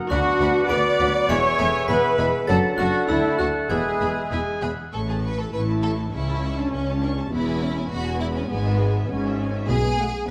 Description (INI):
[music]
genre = cinematic, playful, whimsical film cue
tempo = 101 BPM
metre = 2/4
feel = straight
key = unclear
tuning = A4 = 437 Hz
[part]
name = bright clarinet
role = second line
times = 0.0-4.6 s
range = E5 to F#5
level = -35 LUFS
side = equal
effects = none
[part]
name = warm cor anglais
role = second line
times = 0.0-4.9 s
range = B4 to A5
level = -34 LUFS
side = equal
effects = none
[part]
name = warm French horn section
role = sustained chords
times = 0.0-4.6 s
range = B3 to B4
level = -30 LUFS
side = equal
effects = none
[part]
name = glockenspiel with brass mallets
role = melody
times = 0.1-4.6 s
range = E6 to D7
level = -34 LUFS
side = equal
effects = none
[part]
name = rich studio violin section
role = melody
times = 0.1-10.2 s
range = E5 to C#6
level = -42 LUFS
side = equal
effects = none
[part]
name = clear studio violin section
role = second line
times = 0.1-10.3 s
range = B3 to G#5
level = -33 LUFS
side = equal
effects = none
[part]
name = concert flute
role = second line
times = 0.1-4.6 s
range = E5 to D6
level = -32 LUFS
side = equal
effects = none
[part]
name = mellow bassoon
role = accompaniment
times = 0.1-4.6 s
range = F#3 to D4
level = -31 LUFS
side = equal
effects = none
[part]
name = rich studio viola section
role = accompaniment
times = 0.1-10.3 s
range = G#3 to D5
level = -27 LUFS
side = equal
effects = none
[part]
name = rich studio cello section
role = bass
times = 0.1-10.2 s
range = C#2 to B2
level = -30 LUFS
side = equal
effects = none
[part]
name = rich studio double bass section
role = bass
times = 0.1-10.3 s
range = E1 to D2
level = -30 LUFS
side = equal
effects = none
[sound]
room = moderate scoring stage reverb, RT60 1.6 s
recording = none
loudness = -22 LUFS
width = mono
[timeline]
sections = 0.0-4.9 A section; 4.9-10.3 B section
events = none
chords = 0.1 Bm/D; 1.3 E; 2.5 D/F#; 3.1 D; 3.7 E; 4.9 A; 6.1 A/C#; 7.3 E; 8.5 E/G#; 9.7 G#m7/B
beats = | 0.11 0.70 | 1.29 1.89 | 2.48 3.09 | 3.70 4.31 | 4.93 5.53 | 6.13 6.72 | 7.32 7.91 | 8.50 9.10 | 9.69 10.29